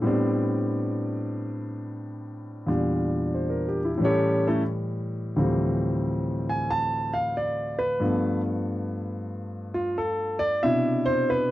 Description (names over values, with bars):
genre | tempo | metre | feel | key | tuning
solo jazz | 91 BPM | 4/4 | swing 66% on 8ths, rubato | unclear | A4 = 445 Hz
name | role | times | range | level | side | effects
warm concert grand piano | solo | 0.0-11.5 s | D2 to A5 | -24 LUFS | equal | none
room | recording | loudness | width
light reverb | dry, close 1970s-style studio recording | -24 LUFS | side -15 dB against mid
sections
0.0-11.5 A section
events
grand piano solo 0.0-11.5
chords
0.0 Am11; 2.7 Em7b5; 4.0 A7; 5.4 Dm11; 8.0 G9; 10.6 Cmaj9